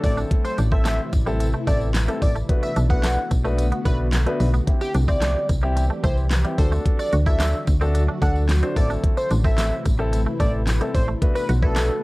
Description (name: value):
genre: dance-pop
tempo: 110 BPM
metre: 4/4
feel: straight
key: A dorian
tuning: A4 = 439 Hz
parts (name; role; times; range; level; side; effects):
- plucky unison lead; melody; 0.0-12.0 s; G4 to F#5; -28 LUFS; equal; sidechain pumping, cassette tape, tape echo
- warm grand piano; accompaniment; 0.0-11.9 s; A3 to C5; -28 LUFS; left 2 dB; sidechain pumping
- ethereal airy pad; sustained chords; 0.0-12.0 s; C3 to G4; -31 LUFS; equal; ensemble chorus, built-in reverb, sidechain pumping
- twangy electric guitar; riff; 0.0-11.9 s; G3 to F#4; -32 LUFS; right 3 dB; analog chorus
- solid FM bass; bass; 0.0-11.9 s; A1 to D2; -21 LUFS; equal; sidechain pumping
- smooth R&B drum kit; drums; 0.0-11.9 s; handclaps, hi-hat, kick drum, snare drum; -22 LUFS; equal; cassette tape
- tambourine; percussion; 0.0-11.9 s; none; -42 LUFS; left 4 dB; none
room: light reverb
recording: home recording on cassette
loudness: -18 LUFS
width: side -21 dB against mid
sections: 0.0-12.0 A section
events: none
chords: 0.0 Am; 2.5 Bm7; 4.7 C; 6.6 D; 8.8 Am; 11.2 Bm7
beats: | 0.31 0.85 1.40 1.95 | 2.49 3.04 3.58 4.13 | 4.67 5.22 5.76 6.31 | 6.86 7.40 7.95 8.49 | 9.04 9.58 10.13 10.67 | 11.22 11.77